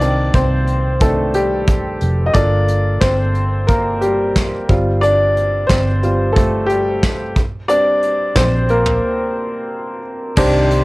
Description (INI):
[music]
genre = piano-driven pop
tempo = 90 BPM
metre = 4/4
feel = straight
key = Bb major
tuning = A4 = 439 Hz
[part]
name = clear upright piano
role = accompaniment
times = 0.0-10.8 s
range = C3 to Eb5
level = -16 LUFS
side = equal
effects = none
[part]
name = vintage muted fingered electric bass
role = bass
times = 0.0-10.8 s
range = F1 to C2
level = -18 LUFS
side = equal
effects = none
[part]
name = soft brush drum kit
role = drums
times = 0.0-10.8 s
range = crash cymbal, hi-hat, kick drum, snare drum, toms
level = -18 LUFS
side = equal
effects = none
[part]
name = direct-recorded clean electric guitar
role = riff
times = 10.4-10.7 s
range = D4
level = -22 LUFS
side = right 3 dB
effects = none
[sound]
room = light reverb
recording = home recording on cassette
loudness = -13 LUFS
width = side -21 dB against mid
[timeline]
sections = 0.0-10.4 A section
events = upright piano solo 0.0-10.4; break 9.0-10.4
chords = 0.0 Cmadd9; 2.4 Gm7; 4.7 G9sus4; 7.4 Bb6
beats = 0.34 1.01 1.68 | 2.35 3.02 3.69 4.36 | 5.03 5.70 6.36 7.03 | 7.70 8.37 9.04 9.71 | 10.38